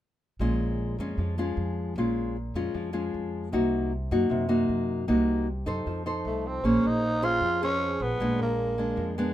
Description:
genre	bossa nova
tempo	154 BPM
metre	4/4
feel	straight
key	Bb minor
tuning	A4 = 440 Hz
part	nylon-string guitar	accompaniment	0.4-9.3 s	Bb2 to C5	-27 LUFS	left 1 dB	none
part	upright bass	bass	0.4-9.3 s	Bb1 to Gb2	-32 LUFS	equal	none
part	growling tenor saxophone	melody	6.3-9.1 s	A3 to F4	-27 LUFS	right 1 dB	none
part	bell-like tine electric piano	accompaniment	6.6-9.3 s	Ab4 to C5	-36 LUFS	right 3 dB	none
room	moderate small room reverb, RT60 0.6 s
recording	minimal, uncompressed stereo recording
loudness	-25 LUFS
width	side -12 dB against mid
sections	0.4-6.6 A section; 6.6-9.3 B section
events	none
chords	0.4 Bbm7; 3.5 Cm7b5; 5.9 F7; 6.6 Bbm9; 8.2 Bb7b9

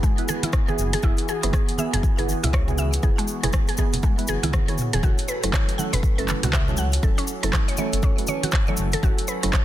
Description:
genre	afro house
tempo	120 BPM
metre	4/4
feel	swing 60% on 16ths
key	F# minor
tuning	A4 = 438 Hz
part	warm analog pad	sustained chords	0.0-9.6 s	E3 to A4	-33 LUFS	equal	chorus, sidechain pumping
part	mallet-like synth pluck	arpeggios	0.0-9.6 s	G#3 to F#5	-30 LUFS	equal	chorus, sidechain pumping, digital delay
part	deep mellow chord stab	stabs	0.0-9.6 s	F#3 to C#5	-30 LUFS	right 4 dB	chorus, sidechain pumping, digital delay
part	electronic kick drum	drums	0.0-9.6 s	none	-22 LUFS	equal	none
part	cabasa	percussion	0.0-9.6 s	none	-35 LUFS	left 2 dB	none
part	afro-pop drum kit	drums	0.2-9.6 s	handclaps, hi-hat, rim click, toms	-28 LUFS	right 1 dB	soft clipping on snare
part	congas	percussion	0.3-9.6 s	none	-32 LUFS	right 4 dB	none
part	dark detuned saw bass	bass	0.8-9.5 s	E1 to C#2	-25 LUFS	equal	sidechain pumping
room	light reverb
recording	dense, heavily limited modern master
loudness	-20 LUFS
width	side -13 dB against mid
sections	0.0-9.6 A section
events	drum fill 4.0-5.0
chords	0.0 E/F#; 5.0 F#m7

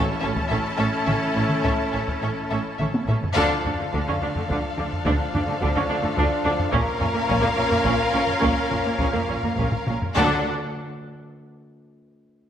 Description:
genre	cinematic, epic orchestral film score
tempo	70 BPM (dotted quarters)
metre	6/8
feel	straight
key	D harmonic minor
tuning	A4 = 440 Hz
part	rich symphonic violin section	second line	0.0-10.5 s	A4 to Bb4	-30 LUFS	left 2 dB	none
part	rich studio viola section	accompaniment	0.0-10.5 s	A3 to D4	-29 LUFS	right 2 dB	none
part	rich symphonic string section	sustained chords	0.0-10.5 s	C#4 to A5	-29 LUFS	equal	none
part	warm French horn section	sustained chords	0.0-10.4 s	F3 to D4	-30 LUFS	left 1 dB	none
part	rich symphonic cello section	bass	0.0-10.5 s	A2 to D3	-29 LUFS	right 2 dB	none
part	rich symphonic double bass section	bass	0.0-10.5 s	A1 to D2	-30 LUFS	right 2 dB	none
part	timpani	percussion	0.0-0.7, 10.2-10.4 s	A2 to D3	-34 LUFS	left 1 dB	none
part	warm symphonic violin section	melody	0.2-10.5 s	E5 to F#5	-31 LUFS	left 4 dB	none
part	taiko ensemble	drums	0.4-11.3 s	none	-27 LUFS	equal	none
room	moderate scoring stage reverb, RT60 1.7 s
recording	none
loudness	-20 LUFS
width	side -9 dB against mid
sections	0.0-3.4 A section; 3.4-10.2 B section; 10.2-11.9 C section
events	drum fill 2.9-3.4, 9.7-10.2; band accent 3.4-3.9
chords	0.0 A; 3.4 Dm; 6.7 Bbm; 10.2 D

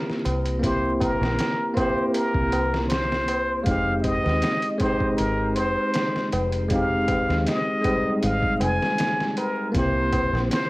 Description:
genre	trip hop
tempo	79 BPM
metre	4/4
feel	straight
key	F minor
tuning	A4 = 443 Hz
part	trumpet with plunger mute	melody	0.0-10.7 s	Bb4 to Ab5	-26 LUFS	equal	vintage 12-bit sampler grit, cassette tape, tape echo
part	bell-like tine electric piano	accompaniment	0.0-10.7 s	G3 to G4	-25 LUFS	equal	harmonic tremolo, cassette tape
part	trip hop sampler-style drum kit	drums	0.1-10.7 s	hi-hat, kick drum, snare drum	-28 LUFS	equal	overdrive, vintage 12-bit sampler grit, studio reverb, cassette tape
part	deep dub fingered electric bass	bass	0.3-10.5 s	F1 to Eb2	-27 LUFS	equal	none
part	tabla	percussion	0.3-10.7 s	none	-32 LUFS	left 1 dB	none
room	light reverb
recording	home recording on cassette, vinyl crackle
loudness	-21 LUFS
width	side -20 dB against mid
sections	0.0-10.7 A section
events	none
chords	0.0 C7; 3.7 Fm7; 9.7 C7

